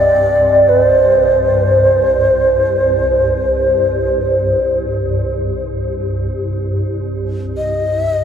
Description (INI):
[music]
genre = world meditative, free-time meditation music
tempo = free time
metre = none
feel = none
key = C minor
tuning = A4 = 440 Hz
[part]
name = mellow hollow Native American-style cedar flute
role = melody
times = 0.0-8.2 s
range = C5 to Eb5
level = -13 LUFS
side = equal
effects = diffuse ambient delay
[part]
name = swarming drone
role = drone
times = 0.0-8.2 s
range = C2 to G2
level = -19 LUFS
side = equal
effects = built-in reverb, lush chorus
[sound]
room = wet huge ambient reverb, RT60 8.3 s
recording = dreamy mix soaked in reverb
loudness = -12 LUFS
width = side -8 dB against mid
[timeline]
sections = 0.0-8.2 A section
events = none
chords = none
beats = free time